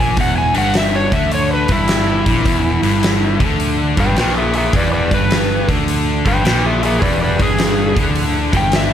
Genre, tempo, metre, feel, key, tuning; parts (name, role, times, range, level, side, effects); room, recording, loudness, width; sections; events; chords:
blues rock power trio and southern rock; 105 BPM; 4/4; swing 66% on 8ths; A4 = 441 Hz
overdriven slide guitar; melody; 0.0-8.9 s; E4 to G#5; -18 LUFS; equal
distorted electric guitar; riff; 0.0-8.9 s; E2 to D3; -19 LUFS; left 1 dB; distortion
fuzz picked electric bass; bass; 0.0-8.9 s; E1 to D2; -20 LUFS; equal; overdrive
huge arena drum kit; drums; 0.2-8.9 s; hi-hat, kick drum, snare drum; -18 LUFS; equal
overdriven tonewheel organ; sustained chords; 7.0-8.9 s; E4 to B4; -29 LUFS; right 3 dB; chorus vibrato, slow rotary speaker
light reverb; -13 LUFS; side -9 dB against mid
0.0-8.9 A section
electric slide guitar solo 0.0-8.9
0.0 E